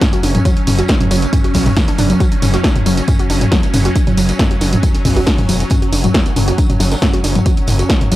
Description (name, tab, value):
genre	driving peak-time techno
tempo	137 BPM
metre	4/4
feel	straight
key	unclear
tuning	A4 = 439 Hz
part	warbly dusty pluck	riff	0.0-8.2 s	E3 to F#4	-19 LUFS	equal	chorus, sidechain pumping, analog delay
part	swarming drone	drone	0.0-8.2 s	F#3 to C#4	-21 LUFS	right 1 dB	built-in reverb, sidechain pumping
part	deep reggae drum kit	drums	0.0-8.2 s	hi-hat, snare drum, tambourine	-29 LUFS	right 1 dB	none
part	electronic kick drum	drums	0.0-8.0 s	none	-15 LUFS	equal	none
part	punchy analog drum machine	drums	0.0-8.2 s	hi-hat, snare drum, tambourine, toms	-17 LUFS	equal	overdrive, sidechain pumping on hats, sidechain pumping on cymbals, sidechain pumping on perc, sidechain pumping on toms
part	gritty driven synth bass	bass	0.2-8.2 s	E1 to B1	-17 LUFS	equal	sidechain pumping
room	digital ambience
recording	dry, gritty hardware recording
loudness	-11 LUFS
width	side -15 dB against mid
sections	0.0-8.2 A section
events	none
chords	0.0 F#5